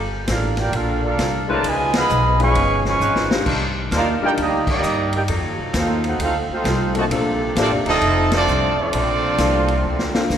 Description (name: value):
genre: jazz, big band swing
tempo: 132 BPM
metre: 4/4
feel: swing 65% on 8ths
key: Bb major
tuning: A4 = 439 Hz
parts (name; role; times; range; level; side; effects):
- clear saxophone section; sustained chords; 0.0-10.2 s; Bb2 to Cb5; -29 LUFS; equal; none
- upright bass; bass; 0.0-10.4 s; D1 to G2; -23 LUFS; equal; none
- mellow trumpet section; melody; 0.3-10.3 s; Bb3 to Db6; -21 LUFS; right 1 dB; none
- warm trombone section; second line; 0.3-10.3 s; Cb3 to G4; -26 LUFS; right 2 dB; none
- vintage drum kit; drums; 0.3-10.4 s; crash cymbal, hi-hat, kick drum, ride cymbal, snare drum; -26 LUFS; left 1 dB; none
- warm upright piano; accompaniment; 1.5-10.4 s; G3 to Cb5; -26 LUFS; left 4 dB; none
room: wet concert hall reverb, RT60 2.4 s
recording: recorded in a church or concert hall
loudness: -17 LUFS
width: side -9 dB against mid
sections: 0.0-10.4 A section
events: band accent 1.9, 4.6, 8.2; drum fill 3.0-3.5, 9.8-10.4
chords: 0.0 Gm9; 1.6 Db9; 3.5 Cm11; 5.3 F7b9; 7.1 Bbmaj9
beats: 0.28 0.73 1.19 | 1.64 2.10 2.55 3.01 | 3.46 3.92 4.37 4.83 | 5.28 5.74 6.20 6.65 | 7.11 7.56 8.02 8.47 | 8.93 9.38 9.84 10.30